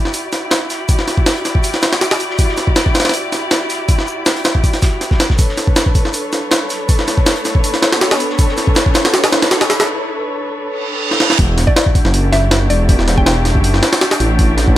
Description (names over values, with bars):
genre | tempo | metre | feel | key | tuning
drum and bass, jungle | 160 BPM | 4/4 | straight | E minor | A4 = 442 Hz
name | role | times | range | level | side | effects
muted chamber string section | sustained chords | 0.0-14.8 s | D4 to D5 | -20 LUFS | left 1 dB | vintage 12-bit sampler grit
crunchy breakbeat drum kit | drums | 0.1-9.8 s | hi-hat, shaker, snare drum | -28 LUFS | equal | none
jungle sampler-style drum kit | drums | 0.1-14.8 s | hi-hat, kick drum, snare drum | -13 LUFS | equal | overdrive
riser and reverse cymbal | sound effects | 7.2-11.4 s | none | -23 LUFS | right 3 dB | none
dark detuned saw bass | bass | 11.4-14.8 s | E1 to A1 | -14 LUFS | equal | none
mallet-like synth pluck | melody | 11.7-13.3 s | D5 to G5 | -22 LUFS | left 1 dB | chorus, dub echo
room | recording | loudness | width
light reverb, studio reverb | none | -12 LUFS | side -13 dB against mid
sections
0.0-11.4 A section; 11.4-14.8 B section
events
build-up 0.0-11.4; riser 7.2-9.9; break 9.9-11.4; reverse cymbal 10.8-11.4; drum fill 11.1; drop 11.4-14.8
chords
0.0 Em9; 5.4 Bm9; 11.4 Em9